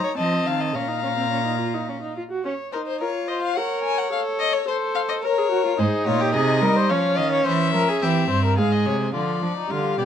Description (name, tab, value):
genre	classical, baroque-style fugue for string quartet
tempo	107 BPM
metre	3/4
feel	straight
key	Bb minor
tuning	A4 = 441 Hz
part	warm violin	melody	0.0-10.1 s	Bb4 to Bb5	-26 LUFS	left 9 dB	none
part	dark violin	second line	0.0-10.1 s	D4 to F5	-25 LUFS	left 3 dB	none
part	warm viola	accompaniment	0.0-10.1 s	F3 to Bb4	-26 LUFS	right 2 dB	none
part	warm cello	bass	0.2-2.2, 5.8-10.1 s	G2 to G3	-24 LUFS	right 4 dB	none
room	light reverb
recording	dark, warm production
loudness	-20 LUFS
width	side -8 dB against mid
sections	0.0-2.4 A section; 2.4-9.1 B section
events	none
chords	0.2 F7; 0.7 Bbm; 2.4 Bbm/Db (rootless); 3.6 Gb/Bb; 4.1 F/A (rootless); 5.2 Bbm; 5.8 Fm (rootless); 6.9 Db/F; 7.5 C/E; 8.6 Fm/Ab; 9.1 G7(no3)/D